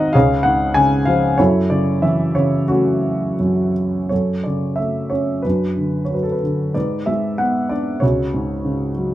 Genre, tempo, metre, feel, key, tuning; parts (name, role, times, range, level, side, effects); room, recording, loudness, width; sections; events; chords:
classical, lyrical solo piano; 80-100 BPM; 4/4; rubato; F# minor; A4 = 440 Hz
dark grand piano; solo; 0.0-9.1 s; C#2 to G#5; -16 LUFS; equal
moderate studio reverb, RT60 0.6 s; minimal, uncompressed stereo recording; -16 LUFS; side -14 dB against mid
0.0-4.1 A section; 4.1-9.1 A section
0.1 C#; 1.4 F#m7; 5.4 Bm/F#; 6.7 G#dim; 8.0 C#sus4